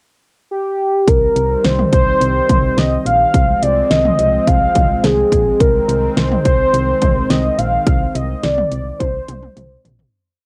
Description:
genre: synth-pop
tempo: 106 BPM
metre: 4/4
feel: straight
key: unclear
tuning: A4 = 440 Hz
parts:
  - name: warm velvety synth lead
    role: melody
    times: 0.5-9.8 s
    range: G4 to F5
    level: -18 LUFS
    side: equal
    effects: chorus, cassette tape
  - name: brassy analog pad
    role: sustained chords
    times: 1.1-10.1 s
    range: Eb3 to C4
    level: -25 LUFS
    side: equal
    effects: chorus, cassette tape
  - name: solid FM bass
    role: bass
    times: 1.1-10.0 s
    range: Bb1 to C2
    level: -22 LUFS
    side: equal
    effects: none
  - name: pop drum kit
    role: drums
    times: 1.1-10.1 s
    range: hi-hat, kick drum, snare drum, toms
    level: -19 LUFS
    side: equal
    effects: cassette tape
room: moderate booth ambience, RT60 0.2 s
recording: home recording on cassette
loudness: -15 LUFS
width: mono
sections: 0.0-1.1 pickup bar; 1.1-10.1 verse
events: fade-out 7.9-10.1; drum fill 9.0-10.1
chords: 0.0 N.C.; 1.1 Cm; 3.3 Fm/C; 5.6 Ab

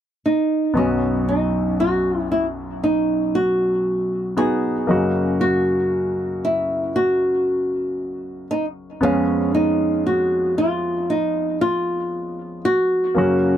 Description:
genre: pop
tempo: 58 BPM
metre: 4/4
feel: straight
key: B major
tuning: A4 = 440 Hz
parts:
  - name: flamenco guitar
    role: melody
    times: 0.3-13.6 s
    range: C#4 to G#4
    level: -20 LUFS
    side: equal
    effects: tape echo
  - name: bright concert grand piano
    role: accompaniment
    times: 0.7-13.6 s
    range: B1 to E#5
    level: -23 LUFS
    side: left 1 dB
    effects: none
room: moderate booth ambience, RT60 0.3 s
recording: dry, close 1970s-style studio recording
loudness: -18 LUFS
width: side -10 dB against mid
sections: 0.8-13.6 A section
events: none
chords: 0.0 N.C.; 0.8 B; 4.9 F#6; 9.0 C#7/E#

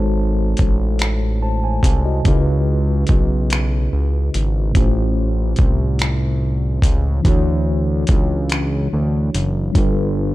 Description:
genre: slow six-eight R&B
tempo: 48 BPM (dotted quarters)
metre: 6/8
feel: straight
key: A major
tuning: A4 = 441 Hz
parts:
  - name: mellow tine electric piano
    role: accompaniment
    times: 0.0-10.3 s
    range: A2 to A5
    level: -22 LUFS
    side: equal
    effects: medium stereo tremolo
  - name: fat analog bass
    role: bass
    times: 0.0-10.3 s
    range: F#1 to D2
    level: -18 LUFS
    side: equal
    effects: none
  - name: dusty soul sampler-style drum kit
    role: drums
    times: 0.6-9.9 s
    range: finger snaps, hi-hat, kick drum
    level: -17 LUFS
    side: equal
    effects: overdrive
room: little or no reverb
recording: dark, warm production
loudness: -15 LUFS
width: side -17 dB against mid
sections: 0.0-10.3 A section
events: none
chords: 0.0 G#7b9; 2.2 C#m7; 4.8 A7alt; 7.2 Dmaj9; 9.8 G9

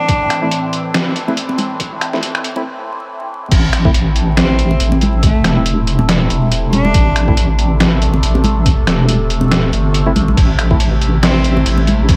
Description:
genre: deep dubstep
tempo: 140 BPM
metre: 4/4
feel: swing 56% on 16ths, half-time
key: A minor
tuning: A4 = 440 Hz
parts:
  - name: warm cello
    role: melody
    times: 0.0-0.5, 4.4-7.3, 11.2-11.6 s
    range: A3 to D4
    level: -24 LUFS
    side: equal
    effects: dub echo
  - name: overtone-sweeping drone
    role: sustained chords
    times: 0.0-12.2 s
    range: A2 to A4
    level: -24 LUFS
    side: equal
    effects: chorus, built-in reverb, phaser
  - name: electronic kick drum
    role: drums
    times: 0.1-12.2 s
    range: none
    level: -15 LUFS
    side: equal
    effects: overdrive
  - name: trip hop sampler-style drum kit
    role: drums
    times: 0.1-12.2 s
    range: crash cymbal, finger snaps, hi-hat, snare drum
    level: -20 LUFS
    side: equal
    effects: overdrive
  - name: tine electric piano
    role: stabs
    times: 0.4-7.3, 10.1-10.8 s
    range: A3 to E4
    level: -27 LUFS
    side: equal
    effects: none
  - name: congas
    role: percussion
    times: 1.3-12.0 s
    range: none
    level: -22 LUFS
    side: equal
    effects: dub echo
  - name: deep soft wobble bass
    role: bass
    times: 3.5-12.2 s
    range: E1 to A1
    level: -17 LUFS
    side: equal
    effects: chorus
room: light reverb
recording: vinyl crackle, high-pass filter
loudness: -14 LUFS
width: mono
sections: 0.0-3.5 A section; 3.5-12.2 B section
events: build-up 0.0-3.5; filter sweep 0.0-3.5; break 2.7-3.5; drop 3.5-12.2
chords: 0.0 Am

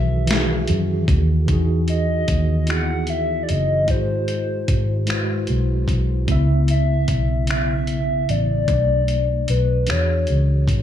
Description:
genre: slow six-eight R&B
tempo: 50 BPM (dotted quarters)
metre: 6/8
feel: straight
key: E major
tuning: A4 = 441 Hz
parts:
  - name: hollow clarinet-like synth lead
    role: melody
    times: 0.0-10.8 s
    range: B4 to F#5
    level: -24 LUFS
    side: left 2 dB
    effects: chorus, phaser, slapback echo
  - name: mellow tine electric piano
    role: accompaniment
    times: 0.0-10.8 s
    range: B2 to E5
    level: -24 LUFS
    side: equal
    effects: medium stereo tremolo
  - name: vintage muted fingered electric bass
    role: bass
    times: 0.0-10.8 s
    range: F#1 to F#2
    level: -20 LUFS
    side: equal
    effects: none
  - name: dusty soul sampler-style drum kit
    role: drums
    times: 0.3-10.8 s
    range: finger snaps, hi-hat, kick drum, snare drum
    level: -24 LUFS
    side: equal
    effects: none
room: little or no reverb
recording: small room ambience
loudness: -17 LUFS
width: side -10 dB against mid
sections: 0.0-1.5 A section; 1.5-10.8 B section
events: none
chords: 0.0 Emaj9; 3.9 G#7alt; 6.3 C#m7; 8.7 Bm7; 9.9 E13

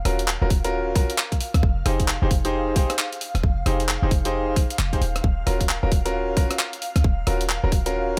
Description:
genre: UK garage, two-step garage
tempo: 133 BPM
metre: 4/4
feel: swing 62% on 16ths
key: Eb dorian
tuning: A4 = 441 Hz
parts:
  - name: airy breathy pad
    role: sustained chords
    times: 0.0-8.2 s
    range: F5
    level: -37 LUFS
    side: equal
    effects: chorus, sidechain pumping
  - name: bright grand piano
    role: stabs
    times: 0.1-8.2 s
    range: Db4 to C5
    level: -29 LUFS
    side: equal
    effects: vintage 12-bit sampler grit, dub echo
  - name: short 808-style bass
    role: bass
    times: 0.1-8.2 s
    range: Eb1 to Db2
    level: -26 LUFS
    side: equal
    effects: none
  - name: breakbeat sampler-style drum kit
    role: drums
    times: 0.1-8.2 s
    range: handclaps, hi-hat, rim click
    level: -29 LUFS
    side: equal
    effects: none
  - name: electronic kick drum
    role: drums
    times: 0.5-7.8 s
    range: none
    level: -24 LUFS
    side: equal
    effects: none
room: little or no reverb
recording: none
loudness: -22 LUFS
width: mono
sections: 0.0-8.2 A section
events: none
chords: 0.0 Ebm9; 1.6 Fm9; 5.2 Ebm9

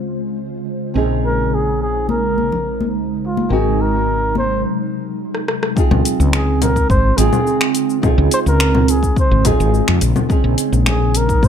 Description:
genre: sunset chillout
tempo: 106 BPM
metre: 4/4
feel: straight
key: unclear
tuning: A4 = 443 Hz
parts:
  - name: nylon-string guitar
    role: accompaniment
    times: 0.0-11.5 s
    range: Bb3 to Ab4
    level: -22 LUFS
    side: moving between equal and right 9 dB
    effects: auto-pan, digital delay
  - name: ethereal airy pad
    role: sustained chords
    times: 0.0-11.5 s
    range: C3 to C5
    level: -23 LUFS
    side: equal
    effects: ensemble chorus, built-in reverb, phaser
  - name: woody fretless electric bass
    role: bass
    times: 0.0-11.5 s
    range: Ab1 to Bb2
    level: -17 LUFS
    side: left 1 dB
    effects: none
  - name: trumpet with bucket mute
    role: melody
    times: 1.3-11.5 s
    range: F4 to C5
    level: -20 LUFS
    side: equal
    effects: digital delay
  - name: congas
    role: percussion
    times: 2.1-4.5 s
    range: none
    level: -23 LUFS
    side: left 5 dB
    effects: none
  - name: deep house drum kit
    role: drums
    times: 5.3-11.5 s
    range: cabasa, congas, finger snaps, hi-hat, rim click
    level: -20 LUFS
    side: left 3 dB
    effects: overdrive, low-pass filter on perc, low-pass filter on snare, low-pass filter on hats, low-pass filter on room
  - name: electronic kick drum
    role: drums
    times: 5.8-11.5 s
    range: none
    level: -17 LUFS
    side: left 1 dB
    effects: overdrive
room: light reverb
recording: none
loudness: -14 LUFS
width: side -8 dB against mid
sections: 0.0-5.8 A section; 5.8-11.5 B section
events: break 4.6-5.8; drum fill 5.3-5.8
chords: 0.0 Dbmaj7; 1.0 Bbm11; 3.5 Ab7; 5.8 Dbmaj7; 10.0 Bbm11

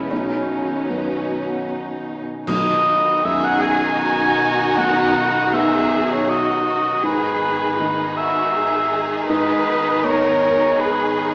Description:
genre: cinematic, emotional film score for orchestra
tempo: 79 BPM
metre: 3/4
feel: rubato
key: B major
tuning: A4 = 440 Hz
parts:
  - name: warm studio violin section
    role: melody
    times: 0.0-11.3 s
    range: D#4 to G#4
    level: -32 LUFS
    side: equal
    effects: none
  - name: warm clarinet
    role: second line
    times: 0.0-1.7 s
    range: B3 to C#4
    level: -32 LUFS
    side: equal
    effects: none
  - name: warm studio violin section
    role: second line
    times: 0.0-11.3 s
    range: C#4 to D#4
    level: -30 LUFS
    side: equal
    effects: none
  - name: felt-muted upright piano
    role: accompaniment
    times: 0.0-11.3 s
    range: B1 to C#5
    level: -29 LUFS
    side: equal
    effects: none
  - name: warm studio viola section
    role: accompaniment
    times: 0.0-11.3 s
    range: D#3 to G#3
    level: -30 LUFS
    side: equal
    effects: none
  - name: concert harp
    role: arpeggios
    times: 0.0-11.3 s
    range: E2 to F#5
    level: -33 LUFS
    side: equal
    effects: none
  - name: warm studio cello section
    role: bass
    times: 0.0-11.3 s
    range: B2 to B4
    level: -28 LUFS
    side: equal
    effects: none
  - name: warm studio double bass section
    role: bass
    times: 0.0-11.3 s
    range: G#1 to B1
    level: -38 LUFS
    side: equal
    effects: none
  - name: mellow cor anglais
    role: second line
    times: 2.5-11.3 s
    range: B4 to G#5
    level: -21 LUFS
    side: equal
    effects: none
  - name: clash cymbals and concert bass drum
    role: percussion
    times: 2.5-4.0 s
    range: none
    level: -37 LUFS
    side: equal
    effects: none
  - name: timpani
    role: percussion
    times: 2.5-3.6 s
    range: B2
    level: -34 LUFS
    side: equal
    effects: none
room: wet scoring stage reverb, RT60 2.1 s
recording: heard from further back in the room, small speaker sound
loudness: -19 LUFS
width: mono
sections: 0.0-2.5 A section; 2.5-11.3 B section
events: band accent 2.5-3.2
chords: 0.1 Badd9; 2.5 B; 7.0 G#m

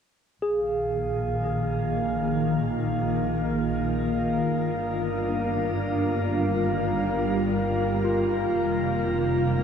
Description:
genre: ambient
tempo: 59 BPM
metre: 4/4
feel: straight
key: unclear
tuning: A4 = 440 Hz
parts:
  - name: glassy FM pad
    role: sustained chords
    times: 0.8-9.6 s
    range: C3 to Bb4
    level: -25 LUFS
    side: equal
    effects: ensemble chorus, built-in reverb
  - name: barky tine electric piano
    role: arpeggios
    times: 0.4-9.6 s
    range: F4 to Ab4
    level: -31 LUFS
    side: right 1 dB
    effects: fast stereo tremolo, diffuse ambient delay
  - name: dark studio double bass section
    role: bass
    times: 0.4-9.6 s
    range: F1 to Bb1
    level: -31 LUFS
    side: equal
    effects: none
  - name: bowed-like drone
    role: drone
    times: 4.3-9.6 s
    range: Eb3 to Bb3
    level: -38 LUFS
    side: left 1 dB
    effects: built-in reverb
  - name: glass harmonica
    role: texture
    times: 0.4-9.6 s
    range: F5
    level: -32 LUFS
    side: right 1 dB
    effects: stereo widening
room: wet shimmer reverb, RT60 7.8 s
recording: cassette tape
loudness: -23 LUFS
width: side -7 dB against mid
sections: 0.4-9.6 A section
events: fade-in on synth drone 0.4-9.6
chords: 0.4 Bbsus4; 4.5 Gm7; 8.6 Fm

